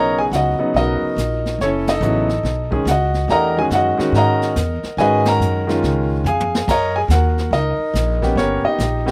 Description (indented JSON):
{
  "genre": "jazz piano trio",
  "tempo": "142 BPM",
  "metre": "4/4",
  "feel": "swing 65% on 8ths",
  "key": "unclear",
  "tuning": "A4 = 440 Hz",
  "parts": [
    { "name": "clear grand piano", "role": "melody", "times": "0.0-9.1 s", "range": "C#3 to A#5", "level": "-20 LUFS", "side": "equal", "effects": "none" },
    { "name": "upright bass", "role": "bass", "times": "0.0-9.1 s", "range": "F#1 to G#2", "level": "-23 LUFS", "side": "equal", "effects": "none" },
    { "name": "jazz brush drum kit", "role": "drums", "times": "0.3-9.1 s", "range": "brushed snare drum, crash cymbal, hi-hat, kick drum, ride cymbal, snare drum, toms", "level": "-29 LUFS", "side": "equal", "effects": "none" }
  ],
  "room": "little or no reverb",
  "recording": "recorded outdoors, with no room sound",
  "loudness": "-18 LUFS",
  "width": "mono",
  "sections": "0.0-9.1 A section",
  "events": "band accent 1.8, 5.2; drum fill 6.3-6.7",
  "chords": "0.0 Bmaj9; 1.6 F#m7; 2.4 B13; 3.3 Emaj9; 5.0 G#m9; 5.8 C#69; 6.7 F#6; 8.4 D#7b13"
}